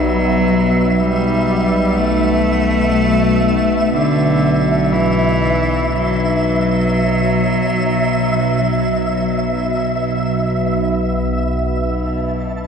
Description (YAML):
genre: dark ambient drone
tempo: free time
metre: none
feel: none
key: B minor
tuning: A4 = 440 Hz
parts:
  - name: clear cello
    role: melody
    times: 0.0-12.7 s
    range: D3 to A3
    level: -18 LUFS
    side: left 1 dB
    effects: ping-pong delay
  - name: organ-like drone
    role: drone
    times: 0.0-12.7 s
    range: B1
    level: -18 LUFS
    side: equal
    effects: ensemble chorus, built-in reverb
  - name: flickering grainy texture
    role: texture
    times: 0.0-12.7 s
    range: E5 to A5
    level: -21 LUFS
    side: right 1 dB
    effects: built-in reverb
room: wet cathedral reverb, RT60 5.8 s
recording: none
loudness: -14 LUFS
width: side -6 dB against mid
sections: 0.0-11.8 A section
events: none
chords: 0.0 B5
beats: free time